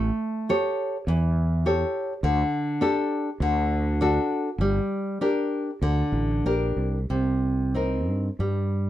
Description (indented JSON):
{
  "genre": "fado-style ballad",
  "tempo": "91-106 BPM",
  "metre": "4/4",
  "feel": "rubato",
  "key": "G minor",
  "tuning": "A4 = 440 Hz",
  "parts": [
    { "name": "nylon-string guitar", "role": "accompaniment", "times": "0.0-8.9 s", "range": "C3 to C#5", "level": "-24 LUFS", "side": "equal", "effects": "none" },
    { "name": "fretless electric bass", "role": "bass", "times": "0.0-8.9 s", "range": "G1 to G2", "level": "-25 LUFS", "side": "equal", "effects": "none" }
  ],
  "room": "moderate studio reverb, RT60 0.6 s",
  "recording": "none",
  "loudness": "-22 LUFS",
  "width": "side -13 dB against mid",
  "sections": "0.0-7.1 A section; 7.1-8.9 B section",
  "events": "none",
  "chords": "0.0 A7; 2.2 Dsus4; 3.4 D; 4.6 Gm; 7.1 Cm7"
}